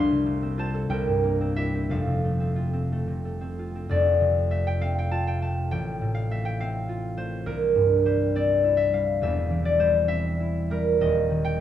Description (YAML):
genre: classical, solo harp piece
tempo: 58-71 BPM (dotted quarters)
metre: 6/8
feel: rubato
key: F major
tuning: A4 = 442 Hz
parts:
  - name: concert harp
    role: solo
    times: 0.0-11.6 s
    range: Eb1 to C6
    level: -22 LUFS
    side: equal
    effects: none
room: light reverb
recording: dark, warm production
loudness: -22 LUFS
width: side -10 dB against mid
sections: 0.0-3.9 A section; 3.9-11.6 A section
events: none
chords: 0.0 F/C; 0.9 C7; 1.9 F; 5.7 F/A; 7.4 C; 9.2 C/E; 11.0 Cm/Eb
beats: 0.90 | 1.89 2.89 | 3.90 4.81 | 5.70 6.58 | 7.44 8.32 | 9.19 10.06 | 11.01